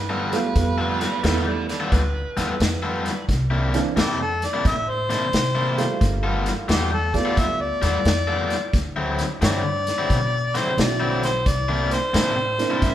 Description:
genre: electric blues shuffle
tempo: 88 BPM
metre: 4/4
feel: swing 66% on 8ths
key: G mixolydian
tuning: A4 = 435 Hz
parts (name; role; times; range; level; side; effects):
- mellow harmonica; melody; 0.0-12.9 s; G4 to E5; -25 LUFS; left 1 dB; overdrive
- upright bass; bass; 0.0-12.9 s; G1 to C3; -25 LUFS; equal; none
- cranked stack guitar; riff; 0.1-12.9 s; C3 to A4; -26 LUFS; left 2 dB; overdrive, spring reverb
- clear upright piano; accompaniment; 0.3-12.9 s; E3 to Bb4; -27 LUFS; right 6 dB; none
- vintage drum kit; drums; 0.3-12.9 s; hi-hat, kick drum, snare drum; -25 LUFS; equal; none
- overdriven slide guitar; second line; 1.0-3.2, 12.8-12.9 s; G4 to E5; -31 LUFS; right 3 dB; none
room: moderate large studio reverb, RT60 1.1 s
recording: band playing live in one room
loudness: -19 LUFS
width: side -12 dB against mid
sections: 0.0-12.9 A section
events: none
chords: 0.0 G9; 3.3 C9; 6.0 G9; 8.7 D9; 11.5 C9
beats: | 0.56 1.24 1.92 2.60 | 3.29 3.97 4.65 5.33 | 6.01 6.69 7.38 8.06 | 8.74 9.42 10.10 10.78 | 11.46 12.14 12.82

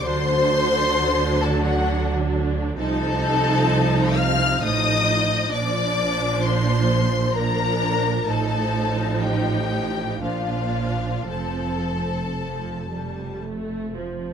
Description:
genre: classical, slow romantic movement for string orchestra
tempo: 55-67 BPM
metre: 3/4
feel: rubato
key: unclear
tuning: A4 = 439 Hz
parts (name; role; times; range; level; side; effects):
- warm studio violin section; melody; 0.0-13.4 s; F5 to F6; -26 LUFS; left 5 dB; none
- warm studio violin section; second line; 0.0-13.4 s; F4 to F5; -26 LUFS; left 3 dB; none
- warm studio viola section; accompaniment; 0.0-14.3 s; F3 to Eb4; -26 LUFS; right 2 dB; none
- warm studio cello section; bass; 0.0-14.3 s; F2 to D3; -28 LUFS; right 3 dB; none
- warm studio double bass section; bass; 0.0-14.3 s; F1 to D2; -26 LUFS; right 3 dB; none
room: moderate scoring stage reverb, RT60 1.9 s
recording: none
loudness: -19 LUFS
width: side -8 dB against mid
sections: 0.0-14.3 A section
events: none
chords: 0.0 D7; 2.8 F7/C; 5.5 Bb; 8.3 F7/A; 10.2 Bb; 11.3 F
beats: | 0.03 0.96 1.88 | 2.79 3.69 4.61 | 5.52 6.43 7.34 | 8.27 9.21 10.22 | 11.29 12.36 13.43

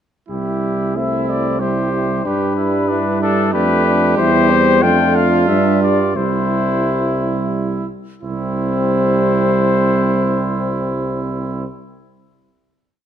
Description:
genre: classical, brass quintet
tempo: 86-94 BPM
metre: 3/4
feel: straight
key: C major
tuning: A4 = 441 Hz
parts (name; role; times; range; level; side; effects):
- mellow trumpet; melody; 0.3-11.6 s; G4 to G5; -21 LUFS; left 8 dB; none
- warm trumpet; second line; 0.3-11.6 s; D4 to G4; -23 LUFS; right 6 dB; none
- warm French horn; accompaniment; 0.3-11.7 s; C4 to E4; -22 LUFS; left 3 dB; none
- warm euphonium; accompaniment; 0.3-11.7 s; G3 to A3; -22 LUFS; right 3 dB; none
- warm tuba; bass; 0.3-11.7 s; C2 to G2; -20 LUFS; right 3 dB; none
room: moderate scoring stage reverb, RT60 1.5 s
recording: none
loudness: -14 LUFS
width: side -9 dB against mid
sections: 0.3-8.2 A section; 8.2-12.4 final chord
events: slowing down 3.2-8.2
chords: 0.3 C; 2.3 G; 4.2 C/E; 4.8 Dm/F; 5.5 G5; 6.2 C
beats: | 0.30 0.96 1.61 | 2.26 2.90 3.54 | 4.18 4.83 5.49 | 6.17 6.86 7.55 | 8.24 8.93 9.63 | 10.32 11.01

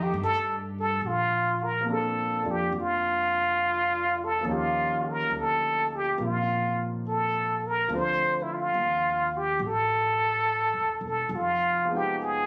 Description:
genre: jazz ballad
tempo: 70 BPM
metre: 4/4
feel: swing 69% on 8ths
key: Bb major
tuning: A4 = 440 Hz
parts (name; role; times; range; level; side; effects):
- trumpet with plunger mute; melody; 0.0-12.5 s; E4 to C5; -27 LUFS; equal; none
- rich studio cello section; sustained chords; 0.0-1.0 s; Eb3 to G4; -42 LUFS; equal; none
- upright bass; bass; 0.0-12.5 s; E1 to G2; -38 LUFS; equal; none
- clear concert grand piano; accompaniment; 1.8-12.5 s; F3 to G5; -37 LUFS; equal; none
room: light reverb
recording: recorded on a phone in the room, club reverb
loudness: -27 LUFS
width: mono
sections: 0.0-1.0 A section; 1.0-12.5 B section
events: muted trumpet solo 0.0-1.0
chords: 0.0 F13 (rootless); 1.0 Bbmaj7; 4.5 Eb9; 7.9 Dm7; 11.3 Fm7b5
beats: 0.15 | 1.02 1.87 2.73 3.60 | 4.46 5.31 6.17 7.03 | 7.88 8.73 9.59 10.45 | 11.31 12.17

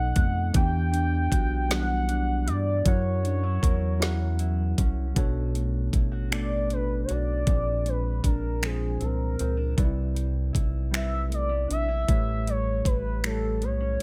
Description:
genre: slow six-eight R&B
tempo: 52 BPM (dotted quarters)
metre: 6/8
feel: straight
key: B minor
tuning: A4 = 439 Hz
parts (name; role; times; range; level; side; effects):
- gliding portamento lead; melody; 0.0-14.0 s; G#4 to G5; -33 LUFS; equal; chorus
- mellow electric guitar; second line; 0.0-14.0 s; A2 to A#4; -37 LUFS; equal; digital delay
- tine electric piano; accompaniment; 0.0-14.0 s; A2 to G5; -35 LUFS; equal; overdrive
- rubbery square bass; bass; 0.0-14.0 s; A1 to G2; -30 LUFS; equal; none
- smooth R&B drum kit; drums; 0.2-14.0 s; finger snaps, hi-hat, kick drum, snare drum; -28 LUFS; equal; none
room: little or no reverb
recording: none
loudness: -26 LUFS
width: mono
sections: 0.0-5.2 A section; 5.2-14.0 B section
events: soft synth lead solo 5.2-14.0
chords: 0.0 B7; 0.6 Em9; 2.9 F#7; 5.2 Bm7; 7.5 A#9; 9.8 Cmaj7; 12.1 A7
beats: | 0.55 1.71 | 2.86 4.01 | 5.17 6.32 | 7.47 8.63 | 9.78 10.94 | 12.09 13.24

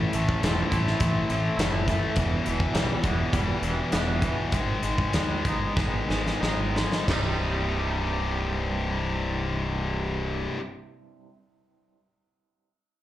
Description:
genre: quiet-loud alternative rock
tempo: 88-104 BPM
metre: 4/4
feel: straight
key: unclear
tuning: A4 = 437 Hz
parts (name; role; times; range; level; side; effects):
- twangy electric guitar; arpeggios; 0.0-10.6 s; C2 to E4; -33 LUFS; right 3 dB; tremolo, slapback echo, digital delay
- tight distorted guitar; riff; 0.0-10.6 s; C2 to Eb4; -28 LUFS; left 4 dB; distortion, slapback echo
- fuzz fingered electric bass; bass; 0.0-10.5 s; C1 to Eb2; -29 LUFS; equal; overdrive
- big rock drum kit; drums; 0.1-7.2 s; crash cymbal, hi-hat, kick drum, snare drum; -28 LUFS; equal; none
room: light reverb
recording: live gig heard through the venue's PA, club reverb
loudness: -24 LUFS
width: side -13 dB against mid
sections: 0.0-7.1 A section; 7.1-9.8 B section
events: slowing down 2.2-7.1; drum fill 5.8-7.1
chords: 0.0 Am; 2.2 Em; 4.5 Abm; 7.1 Cm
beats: 0.43 1.00 1.58 | 2.16 2.74 3.32 3.91 | 4.52 5.13 5.76 6.41 | 7.08 7.76 8.44 9.12

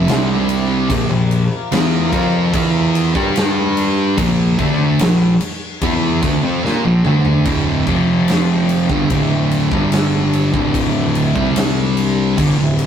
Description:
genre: stoner and doom metal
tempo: 73 BPM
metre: 4/4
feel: straight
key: unclear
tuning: A4 = 440 Hz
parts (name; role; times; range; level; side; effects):
- analog drone; sustained chords; 0.0-12.9 s; D3 to Bb4; -27 LUFS; left 2 dB; chorus
- thick fuzz guitar; riff; 0.0-12.9 s; D2 to G4; -20 LUFS; left 5 dB; distortion
- thick fuzz guitar; riff; 0.0-12.9 s; D2 to G4; -18 LUFS; right 4 dB; distortion
- fuzz picked electric bass; bass; 0.0-12.9 s; D1 to Bb2; -20 LUFS; equal; overdrive
- big rock drum kit; drums; 0.1-12.9 s; crash cymbal, kick drum, snare drum, toms; -21 LUFS; equal; none
room: light reverb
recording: rough rehearsal-room recording, tube saturation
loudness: -13 LUFS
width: side -8 dB against mid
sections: 0.0-7.5 A section; 7.5-12.9 B section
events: drum fill 6.6-7.5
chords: 0.1 C5; 0.9 Bb5; 3.2 G5; 4.2 Bb5; 7.5 D5; 7.9 F5; 8.9 D5; 9.7 G5; 10.5 D5; 11.4 C5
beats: 0.08 | 0.90 1.72 2.54 3.36 | 4.18 5.00 5.82 6.64 | 7.46 8.28 9.10 9.92 | 10.74 11.56 12.38

